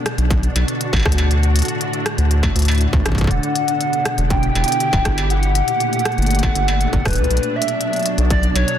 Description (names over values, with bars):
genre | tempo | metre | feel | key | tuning
IDM | 120 BPM | 4/4 | straight | E minor | A4 = 439 Hz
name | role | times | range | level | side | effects
soft string machine | sustained chords | 0.0-8.8 s | A2 to G4 | -22 LUFS | equal | ensemble chorus
industrial drum kit | drums | 0.1-8.8 s | hi-hat, rim click, struck metal | -24 LUFS | left 1 dB | ping-pong delay
round analog bass | bass | 0.2-8.6 s | D1 to D2 | -17 LUFS | equal | none
electronic kick drum | drums | 0.3-8.4 s | none | -20 LUFS | equal | distortion
warbly nostalgic lead | melody | 3.3-8.8 s | B4 to G5 | -21 LUFS | equal | lush chorus, ping-pong delay
room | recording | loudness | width
little or no reverb | dense, heavily limited modern master | -15 LUFS | side -10 dB against mid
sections
0.0-8.8 A section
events
none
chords
0.0 Bm; 1.3 D; 3.3 Emadd9; 5.3 Gmadd9; 7.3 Bm